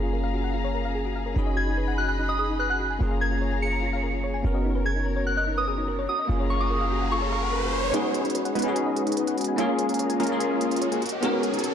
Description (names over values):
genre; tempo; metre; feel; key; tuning
future bass; 146 BPM; 4/4; half-time; unclear; A4 = 440 Hz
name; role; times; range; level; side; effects
bell-like tine electric piano; accompaniment; 0.0-11.7 s; A#3 to A#4; -28 LUFS; left 2 dB; ensemble chorus, ping-pong delay
muted studio string section; sustained chords; 0.0-11.7 s; G#4 to B5; -36 LUFS; left 3 dB; low-pass filter
thumb-piano-like synth pluck; arpeggios; 0.0-11.7 s; D#4 to A#5; -34 LUFS; left 2 dB; chorus, ping-pong delay
warm 808-style bass; bass; 0.0-11.7 s; F#1; -28 LUFS; right 1 dB; high-pass filter
soft synth bell; melody; 1.6-7.9 s; C#6 to C#7; -28 LUFS; equal; chorus, ping-pong delay
riser; sound effects; 6.0-11.7 s; none; -33 LUFS; right 2 dB; none
supersaw stab; riff; 7.9-11.7 s; G#3 to B4; -27 LUFS; right 1 dB; low-pass filter, ping-pong delay
electronic hi-hat; drums; 7.9-11.7 s; none; -35 LUFS; right 2 dB; overdrive
room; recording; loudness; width
light reverb, digital ambience; dark, warm production; -23 LUFS; side -8 dB against mid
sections
0.0-7.9 A section; 7.9-11.7 B section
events
riser 6.0-7.9, 7.9-11.7; build-up 7.9-11.7; filter sweep on supersaw synth 7.9-11.7; filter sweep on string section 7.9-11.7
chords
0.0 F#maj9; 1.4 B6/F#; 3.0 A#m7/F#; 4.4 G#m11/F# (rootless); 6.3 F#maj9; 7.9 B6/F#; 9.6 A#m7/F#; 11.0 G#m11/F#